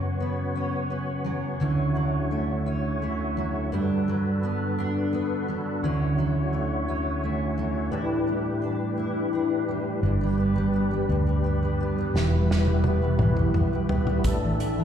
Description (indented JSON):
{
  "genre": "six-eight pop ballad",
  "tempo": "57 BPM (dotted quarters)",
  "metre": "6/8",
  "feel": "straight",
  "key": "D major",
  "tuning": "A4 = 440 Hz",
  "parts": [
    { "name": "fingerpicked steel-string acoustic guitar", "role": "accompaniment", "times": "0.0-14.8 s", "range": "F#2 to E4", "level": "-26 LUFS", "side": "equal", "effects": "double-tracked left and right" },
    { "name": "tonewheel organ", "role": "sustained chords", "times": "0.0-14.8 s", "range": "D2 to C#5", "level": "-29 LUFS", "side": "equal", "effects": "chorus vibrato, slow rotary speaker, plate reverb" },
    { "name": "vintage muted fingered electric bass", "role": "bass", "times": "10.0-14.8 s", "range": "E1 to D2", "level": "-25 LUFS", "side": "equal", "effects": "none" },
    { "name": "unplugged drum kit", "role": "drums", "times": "12.2-14.8 s", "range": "hi-hat, kick drum, snare drum, toms", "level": "-26 LUFS", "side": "equal", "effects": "none" }
  ],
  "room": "moderate club reverb, RT60 0.8 s",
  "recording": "live gig heard through the venue's PA, recital hall reverb",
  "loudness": "-23 LUFS",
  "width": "side -8 dB against mid",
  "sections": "0.0-10.0 A section; 10.0-14.8 B section",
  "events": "drum fill 12.2-14.2",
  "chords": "0.0 F#sus4; 1.6 Dmaj7; 3.7 Gmaj7; 5.8 Dmaj7; 7.9 A7sus4; 10.0 G; 12.2 Emadd9; 14.2 Asus4"
}